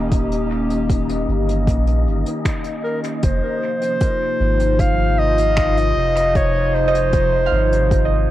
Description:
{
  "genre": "ambient dub",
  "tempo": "77 BPM",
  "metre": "4/4",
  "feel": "straight",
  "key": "F minor",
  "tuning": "A4 = 440 Hz",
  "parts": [
    { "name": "warbly tape-like pad", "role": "sustained chords", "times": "0.0-8.3 s", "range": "C3 to G4", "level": "-23 LUFS", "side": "left 1 dB", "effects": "chorus, built-in reverb, phaser, cassette tape" },
    { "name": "round analog bass", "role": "bass", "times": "0.0-8.3 s", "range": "Eb1 to Bb1", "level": "-20 LUFS", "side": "equal", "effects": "none" },
    { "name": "wind-like tuned noise texture", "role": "texture", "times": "0.0-3.3 s", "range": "Eb4 to Eb5", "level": "-29 LUFS", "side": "left 2 dB", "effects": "built-in reverb, cassette tape" },
    { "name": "electronic kick drum", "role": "drums", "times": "0.1-8.1 s", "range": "none", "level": "-20 LUFS", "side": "equal", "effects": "overdrive, cassette tape" },
    { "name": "soft brush drum kit", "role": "drums", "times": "0.1-8.1 s", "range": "finger snaps, hi-hat", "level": "-34 LUFS", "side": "left 1 dB", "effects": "cassette tape, dub echo" },
    { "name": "clear clarinet", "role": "melody", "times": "2.8-8.3 s", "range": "Bb4 to F5", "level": "-19 LUFS", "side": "equal", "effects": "cassette tape, dub echo" },
    { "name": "concert harp", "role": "arpeggios", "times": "6.9-8.3 s", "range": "Eb5 to F5", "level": "-24 LUFS", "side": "right 7 dB", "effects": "cassette tape, analog delay" }
  ],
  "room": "light reverb, small room ambience",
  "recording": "home recording on cassette",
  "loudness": "-16 LUFS",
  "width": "side -14 dB against mid",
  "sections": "0.0-3.2 A section; 3.2-8.3 B section",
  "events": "band accent 2.5-2.8",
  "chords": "0.0 Eb7; 3.2 Fm7"
}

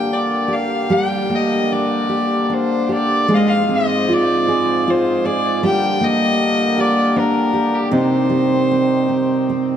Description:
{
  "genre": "celtic folk, Celtic slow air",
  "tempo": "77 BPM",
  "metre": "3/4",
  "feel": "uneven beats, rubato",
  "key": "unclear",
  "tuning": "A4 = 440 Hz",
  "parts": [
    { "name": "rich fiddle", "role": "melody", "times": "0.0-9.8 s", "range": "G4 to G5", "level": "-19 LUFS", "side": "left 1 dB", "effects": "none" },
    { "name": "picked steel-string acoustic guitar", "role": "accompaniment", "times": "0.0-9.8 s", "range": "C3 to Ab4", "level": "-17 LUFS", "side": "right 1 dB", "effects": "none" },
    { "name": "hand-pumped harmonium", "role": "sustained chords", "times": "0.0-9.8 s", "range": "Ab2 to Ab4", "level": "-24 LUFS", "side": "left 1 dB", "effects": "none" }
  ],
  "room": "wet cathedral reverb, RT60 4.4 s",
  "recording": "none",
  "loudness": "-15 LUFS",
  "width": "side -9 dB against mid",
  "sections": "0.0-9.8 A section",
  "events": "none",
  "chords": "0.0 Gm; 3.3 Fm/Ab; 5.6 Gm; 7.9 Cm"
}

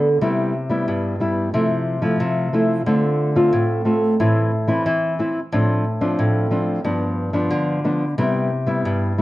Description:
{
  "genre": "samba",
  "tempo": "90 BPM",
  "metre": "4/4",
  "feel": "straight",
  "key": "C major",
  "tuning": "A4 = 440 Hz",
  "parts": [
    { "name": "nylon-string guitar", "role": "solo", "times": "0.0-9.2 s", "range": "G2 to F4", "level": "-17 LUFS", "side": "equal", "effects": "none" }
  ],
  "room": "moderate large studio reverb, RT60 1.1 s",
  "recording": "worn, warbling old tape, cassette tape, warbly pitch drift",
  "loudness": "-18 LUFS",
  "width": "side -16 dB against mid",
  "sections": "0.0-9.2 A section",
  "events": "none",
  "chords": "0.2 Cmaj7; 1.5 Fmaj7/C; 2.9 Dm7; 4.2 Am; 5.5 Dm7/A; 6.8 G7; 8.2 Cmaj7"
}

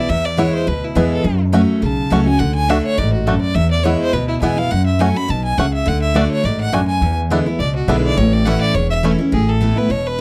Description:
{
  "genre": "bluegrass",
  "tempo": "208 BPM",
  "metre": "4/4",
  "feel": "swing 54% on 8ths",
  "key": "A major",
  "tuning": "A4 = 440 Hz",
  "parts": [
    { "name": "clear fiddle", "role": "melody", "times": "0.0-10.2 s", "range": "E4 to B5", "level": "-24 LUFS", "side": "equal", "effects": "none" },
    { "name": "picked steel-string acoustic guitar", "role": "accompaniment", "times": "0.0-10.2 s", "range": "E2 to F#4", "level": "-20 LUFS", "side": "equal", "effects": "none" },
    { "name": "upright bass", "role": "bass", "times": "0.1-10.2 s", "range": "E1 to F#2", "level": "-22 LUFS", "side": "equal", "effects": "none" },
    { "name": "bluegrass banjo", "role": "melody", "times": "0.4-9.1 s", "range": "A3 to F#4", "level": "-23 LUFS", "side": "equal", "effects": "none" }
  ],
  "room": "studio ambience",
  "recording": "dry, close 1970s-style studio recording",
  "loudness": "-17 LUFS",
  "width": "mono",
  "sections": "0.0-9.3 A section",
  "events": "fiddle solo 0.0-9.3",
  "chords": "0.0 E; 1.2 F#m; 2.4 D; 3.6 E; 4.7 F#m; 5.9 D; 7.0 E7; 8.2 A; 9.3 Asus2"
}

